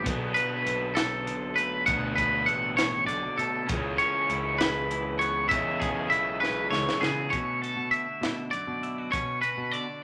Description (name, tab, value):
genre	math rock and midwest emo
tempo	66 BPM (dotted quarters)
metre	6/8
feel	straight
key	unclear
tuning	A4 = 440 Hz
part	twelve-string electric guitar	accompaniment	0.0-10.0 s	F#2 to A4	-40 LUFS	equal	spring reverb
part	twangy electric guitar	arpeggios	0.0-10.0 s	G#4 to F#5	-29 LUFS	equal	none
part	raw garage guitar	riff	0.0-7.3 s	B2 to D4	-36 LUFS	equal	overdrive
part	growling picked electric bass	bass	0.0-9.9 s	A1 to C#3	-39 LUFS	equal	overdrive
part	crisp fusion drum kit	drums	0.1-9.9 s	hi-hat, kick drum, snare drum	-34 LUFS	equal	none
room	moderate large studio reverb, RT60 0.8 s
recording	vinyl crackle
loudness	-27 LUFS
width	mono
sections	0.0-7.3 A section; 7.3-10.0 B section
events	drum fill 6.4-7.3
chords	0.1 Bm7; 3.7 C#m7; 7.3 Bm9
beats	| 0.05 0.96 | 1.87 2.78 | 3.69 4.60 | 5.50 6.41 | 7.32 8.22 | 9.13